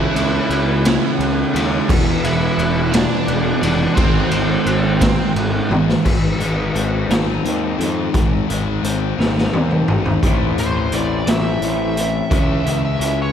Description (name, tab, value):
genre	quiet-loud alternative rock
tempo	58 BPM (dotted quarters)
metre	6/8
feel	straight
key	unclear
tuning	A4 = 440 Hz
part	nasal lead guitar with a parked wah	melody	0.0-5.3, 10.6-13.3 s	B#3 to E5	-24 LUFS	right 1 dB	overdrive, slapback echo
part	rich studio string section	sustained chords	0.0-6.0 s	D#4 to G#5	-32 LUFS	right 1 dB	none
part	crunchy overdriven guitar	riff	0.0-13.3 s	E2 to C#4	-23 LUFS	left 11 dB	none
part	overdriven semi-hollow guitar	riff	0.0-6.0 s	E2 to C#4	-22 LUFS	right 13 dB	none
part	fuzz picked electric bass	bass	0.0-13.3 s	E1 to F2	-22 LUFS	equal	overdrive
part	raw garage drum kit	drums	0.2-13.2 s	crash cymbal, hi-hat, kick drum, ride cymbal, snare drum, toms	-19 LUFS	equal	none
part	electric guitar through a small old amp	arpeggios	6.1-13.3 s	G#2 to E4	-25 LUFS	equal	harmonic tremolo, slapback echo
room	light reverb, small room reverb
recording	none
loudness	-15 LUFS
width	side -8 dB against mid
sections	0.0-6.1 A section; 6.1-10.2 B section; 10.2-13.3 C section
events	drum fill 5.7-6.1, 9.2-10.2; lead electric guitar solo 10.2-13.3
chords	0.0 C#m; 1.9 E; 4.0 G#; 10.2 Am; 12.3 C#m